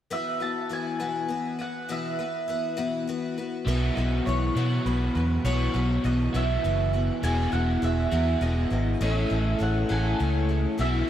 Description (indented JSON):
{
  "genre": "rock",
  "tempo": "67 BPM (dotted quarters)",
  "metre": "6/8",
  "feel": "straight",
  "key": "unclear",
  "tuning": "A4 = 440 Hz",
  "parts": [
    { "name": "mandolin", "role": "melody", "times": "0.1-11.1 s", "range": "B4 to A5", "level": "-31 LUFS", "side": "right 2 dB", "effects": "none" },
    { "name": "picked twelve-string acoustic guitar", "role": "accompaniment", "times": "0.1-11.1 s", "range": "B2 to B4", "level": "-30 LUFS", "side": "left 4 dB", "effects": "none" },
    { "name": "crunchy overdriven guitar", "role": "riff", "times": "3.7-11.1 s", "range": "E2 to A4", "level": "-29 LUFS", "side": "right 1 dB", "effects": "ensemble chorus" },
    { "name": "fingered electric bass", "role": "bass", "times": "3.7-11.0 s", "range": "E1 to B2", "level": "-25 LUFS", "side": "equal", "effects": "none" }
  ],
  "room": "moderate lush hall reverb, RT60 2.7 s",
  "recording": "dreamy mix soaked in reverb",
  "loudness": "-24 LUFS",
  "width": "side -11 dB against mid",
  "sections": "0.1-3.7 A section; 3.7-11.1 B section",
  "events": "none",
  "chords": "0.1 Bsus4; 7.2 Eadd9; 9.0 Amaj7"
}